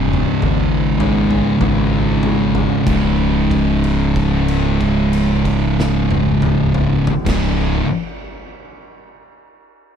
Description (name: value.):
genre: stoner and doom metal.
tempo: 46-53 BPM.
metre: 4/4.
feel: straight.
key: unclear.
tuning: A4 = 440 Hz.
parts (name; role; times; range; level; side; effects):
thick fuzz guitar; riff; 0.0-7.9 s; C#2 to C#3; -18 LUFS; left 9 dB; distortion.
thick fuzz guitar; riff; 0.0-7.9 s; C#2 to C#3; -18 LUFS; right 10 dB; distortion.
growling fingered electric bass; bass; 0.0-7.8 s; C#1 to G#1; -20 LUFS; equal; overdrive.
oversized low-tuned drum kit; drums; 0.1-7.6 s; crash cymbal, kick drum, snare drum, toms; -24 LUFS; equal; none.
room: light reverb.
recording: none.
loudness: -14 LUFS.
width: side -8 dB against mid.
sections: 0.0-2.9 A section; 2.9-8.0 B section.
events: drum fill 0.0-2.9; slowing down 0.0-2.9; held note 2.9-7.3.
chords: 0.0 C#5.